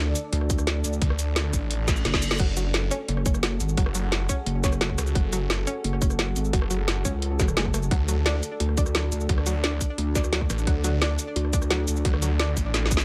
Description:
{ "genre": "dark technical drum and bass", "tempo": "174 BPM", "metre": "4/4", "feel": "straight", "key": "unclear", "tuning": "A4 = 440 Hz", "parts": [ { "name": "deep dark ambient pad", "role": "sustained chords", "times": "0.0-13.0 s", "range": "D4 to D5", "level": "-37 LUFS", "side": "equal", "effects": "chorus, built-in reverb, sidechain pumping" }, { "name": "snarling distorted saw bass", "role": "bass", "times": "0.0-13.0 s", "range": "F#1 to D2", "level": "-28 LUFS", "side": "equal", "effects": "distortion, tube saturation" }, { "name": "drum and bass drum kit", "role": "drums", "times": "0.2-13.0 s", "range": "crash cymbal, hi-hat, rim click, shaker, snare drum", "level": "-30 LUFS", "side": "equal", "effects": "none" }, { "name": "pulsing pluck wobble bass", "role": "bass", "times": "0.3-12.0 s", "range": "F#1 to D2", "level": "-28 LUFS", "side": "equal", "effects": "chorus" }, { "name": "electronic kick drum", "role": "drums", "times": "0.5-13.0 s", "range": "none", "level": "-27 LUFS", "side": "equal", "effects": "overdrive" }, { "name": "reverse cymbal and zap", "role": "sound effects", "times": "1.8-2.4, 7.4-7.5 s", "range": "none", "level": "-38 LUFS", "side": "equal", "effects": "none" }, { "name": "analog pluck", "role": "arpeggios", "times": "2.4-12.5 s", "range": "F#3 to D4", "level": "-36 LUFS", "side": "equal", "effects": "chorus, sidechain pumping, digital delay" } ], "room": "little or no reverb", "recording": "none", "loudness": "-25 LUFS", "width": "mono", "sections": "0.0-13.0 A section", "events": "reverse cymbal 1.8-2.4; drum fill 1.9-2.4, 12.7-13.0", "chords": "0.0 D; 2.4 F#madd9; 7.9 D" }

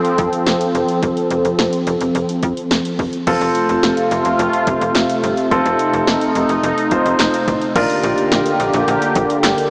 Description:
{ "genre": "synth-pop", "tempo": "107 BPM", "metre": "4/4", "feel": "straight", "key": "unclear", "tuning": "A4 = 439 Hz", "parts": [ { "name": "sweeping resonant pad", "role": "sustained chords", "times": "0.0-9.7 s", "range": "C3 to A4", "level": "-20 LUFS", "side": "equal", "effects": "chorus" }, { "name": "punchy analog drum machine", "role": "drums", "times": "0.0-9.7 s", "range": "crash cymbal, handclaps, hi-hat, kick drum, snare drum", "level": "-24 LUFS", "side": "equal", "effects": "overdrive" }, { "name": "slap-like FM bass", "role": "bass", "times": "0.2-9.5 s", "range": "F1 to F2", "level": "-25 LUFS", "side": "equal", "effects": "none" }, { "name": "clear baby grand piano", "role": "accompaniment", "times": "3.3-9.7 s", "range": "C4 to C5", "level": "-22 LUFS", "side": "equal", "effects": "subtle chorus" } ], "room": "wet huge ambient reverb, RT60 7.7 s", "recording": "dreamy mix soaked in reverb, small speaker sound", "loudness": "-17 LUFS", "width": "mono", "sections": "0.0-3.3 A section; 3.3-7.8 B section; 7.8-9.7 C section", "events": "none", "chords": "0.0 F; 7.8 Bb6" }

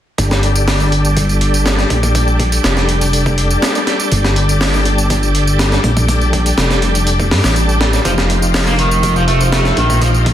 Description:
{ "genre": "breakbeat, breaks", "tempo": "122 BPM", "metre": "4/4", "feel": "straight", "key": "G minor", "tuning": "A4 = 440 Hz", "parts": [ { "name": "bright tonewheel organ", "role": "sustained chords", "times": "0.2-10.3 s", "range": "F3 to G5", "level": "-18 LUFS", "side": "left 1 dB", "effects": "chorus vibrato, slow rotary speaker, sidechain pumping, low-pass filter" }, { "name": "dark detuned saw bass", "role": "bass", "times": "0.2-10.3 s", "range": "F1 to G2", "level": "-14 LUFS", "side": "equal", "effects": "none" }, { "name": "breakbeat sampler-style drum kit", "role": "drums", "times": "0.2-10.3 s", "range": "hi-hat, kick drum, snare drum", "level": "-17 LUFS", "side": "equal", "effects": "high-pass filter on hats, high-pass filter on kick, high-pass filter on snare, high-pass filter on room" }, { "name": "tambourine", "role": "drums", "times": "0.2-10.2 s", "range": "none", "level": "-25 LUFS", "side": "right 2 dB", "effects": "overdrive" }, { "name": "overdriven electric guitar", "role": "riff", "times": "8.1-10.1 s", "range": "Eb3 to Bb3", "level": "-17 LUFS", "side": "right 1 dB", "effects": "dub echo" } ], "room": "light reverb, digital ambience", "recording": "dense, heavily limited modern master, vinyl crackle", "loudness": "-11 LUFS", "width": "side -11 dB against mid", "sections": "0.2-10.3 A section", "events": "filter sweep on detuned saw bass 0.2-10.3", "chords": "0.2 Gmadd9; 8.1 F7sus4" }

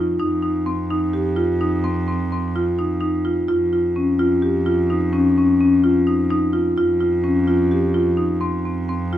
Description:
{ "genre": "contemporary instrumental, chamber music in an uneven meter", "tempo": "255 BPM (eighths)", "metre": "7/8", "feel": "straight", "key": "unclear", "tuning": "A4 = 439 Hz", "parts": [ { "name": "marimba with medium hard mallets", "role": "arpeggios", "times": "0.0-9.2 s", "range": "C4 to G4", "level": "-18 LUFS", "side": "left 1 dB", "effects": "none" }, { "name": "rich cello", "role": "bass", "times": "0.0-9.2 s", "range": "F2", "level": "-24 LUFS", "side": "right 1 dB", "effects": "none" } ], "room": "moderate recital hall reverb, RT60 1.5 s", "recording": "none", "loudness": "-17 LUFS", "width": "side -12 dB against mid", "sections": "0.0-9.2 A section", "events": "none", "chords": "0.0 F5; 3.5 Eb7sus2/F (rootless); 8.4 F5" }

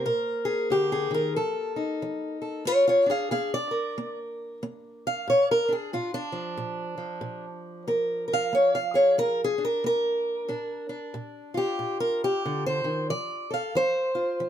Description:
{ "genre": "acoustic country blues, solo or duo", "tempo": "92 BPM", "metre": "4/4", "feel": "swing 60% on 8ths", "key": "Bb mixolydian", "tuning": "A4 = 440 Hz", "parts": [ { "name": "fingerpicked acoustic archtop guitar", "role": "solo", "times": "0.0-14.5 s", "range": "Bb2 to F5", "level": "-24 LUFS", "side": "equal", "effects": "none" } ], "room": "light reverb", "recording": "none", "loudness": "-24 LUFS", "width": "side -10 dB against mid", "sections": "0.0-2.7 A section; 2.7-14.5 B section", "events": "steel-string acoustic guitar solo 2.7-14.5", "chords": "0.0 Bb7; 1.4 F7; 2.7 Bb7; 13.1 F" }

